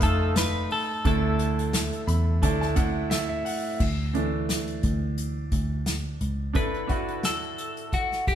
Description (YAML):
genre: piano-driven pop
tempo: 87 BPM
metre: 4/4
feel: swing 56% on 16ths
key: D major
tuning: A4 = 440 Hz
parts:
  - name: twelve-string electric guitar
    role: melody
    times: 0.0-8.3 s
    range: F#4 to B4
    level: -30 LUFS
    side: left 2 dB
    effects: spring reverb
  - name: bright grand piano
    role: accompaniment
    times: 0.0-8.3 s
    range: D3 to B5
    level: -29 LUFS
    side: right 2 dB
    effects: none
  - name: vintage muted picked electric bass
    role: bass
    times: 0.0-6.5 s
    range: F1 to E2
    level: -27 LUFS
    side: equal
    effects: none
  - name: unplugged drum kit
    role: drums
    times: 0.0-8.3 s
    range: crash cymbal, hi-hat, kick drum, snare drum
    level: -28 LUFS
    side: equal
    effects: none
  - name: group handclap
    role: percussion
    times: 0.0-3.3 s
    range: none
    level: -40 LUFS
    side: left 3 dB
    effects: none
room: moderate stone room reverb, RT60 1.2 s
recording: band playing live in one room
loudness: -24 LUFS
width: side -10 dB against mid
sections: 0.0-3.8 A section; 3.8-6.6 B section; 6.6-8.3 C section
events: grand piano fill 1.7-3.8; grand piano solo 3.8-6.6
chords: 0.0 F7; 1.1 Dsus2